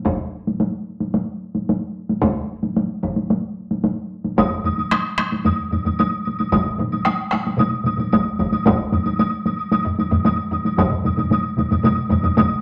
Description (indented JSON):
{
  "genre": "japanese traditional, taiko drum ensemble",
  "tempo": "112 BPM",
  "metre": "4/4",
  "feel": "straight",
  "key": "none",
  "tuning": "none",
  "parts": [
    { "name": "solo taiko drums", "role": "percussion", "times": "0.1-12.5 s", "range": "none", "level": "-23 LUFS", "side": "equal", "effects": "none" },
    { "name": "taiko ensemble", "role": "percussion", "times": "0.1-12.5 s", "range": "none", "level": "-25 LUFS", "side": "equal", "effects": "none" },
    { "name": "taiko ensemble", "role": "percussion", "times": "4.4-12.5 s", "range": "none", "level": "-26 LUFS", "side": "equal", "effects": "none" },
    { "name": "woodblock", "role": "percussion", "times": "4.4-12.5 s", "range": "none", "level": "-27 LUFS", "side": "equal", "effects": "none" },
    { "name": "taiko ensemble", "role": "percussion", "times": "6.5-12.5 s", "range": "none", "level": "-27 LUFS", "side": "equal", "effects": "none" }
  ],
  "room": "wet studio reverb, RT60 0.8 s",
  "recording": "none",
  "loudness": "-21 LUFS",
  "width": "mono",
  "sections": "0.0-4.4 A section; 4.4-12.6 B section",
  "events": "none",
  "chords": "none"
}